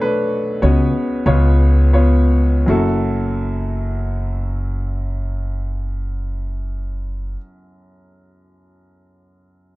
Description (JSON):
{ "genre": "acoustic folk-pop ballad", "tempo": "79-101 BPM", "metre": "3/4", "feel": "straight", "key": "F# minor", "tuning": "A4 = 440 Hz", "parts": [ { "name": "clear upright piano", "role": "melody", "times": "0.0-9.8 s", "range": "B1 to C#5", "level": "-20 LUFS", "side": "left 1 dB", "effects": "none" }, { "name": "upright bass", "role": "bass", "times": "0.6-7.3 s", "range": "F#1 to C#2", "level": "-17 LUFS", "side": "equal", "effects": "none" } ], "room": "little or no reverb", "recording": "dark, warm production, nothing above 7.9 kHz", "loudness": "-16 LUFS", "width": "side -19 dB against mid", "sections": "0.0-2.7 A section; 2.7-7.2 B section", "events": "slowing down 0.0-2.7", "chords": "0.0 Bm7; 0.6 C#7sus4; 2.7 F#m7", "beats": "0.01 | 0.62 1.26 1.94 | 2.67 3.44 4.20 | 4.96 5.72 6.48" }